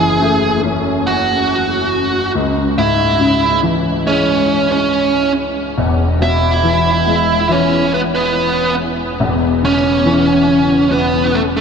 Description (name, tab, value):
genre	pop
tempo	70 BPM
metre	4/4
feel	straight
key	E major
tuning	A4 = 444 Hz
part	smooth overdriven lead guitar	melody	0.0-11.6 s	A3 to G#5	-15 LUFS	right 2 dB	tape echo
part	warm grand piano	accompaniment	0.0-11.6 s	E1 to C#4	-16 LUFS	left 2 dB	ensemble chorus
room	wet huge ambient reverb, RT60 7.6 s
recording	dreamy mix soaked in reverb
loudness	-12 LUFS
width	side -6 dB against mid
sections	0.0-11.6 A section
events	none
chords	0.0 F#m7; 2.3 C#m; 5.8 E; 9.2 A/E (rootless)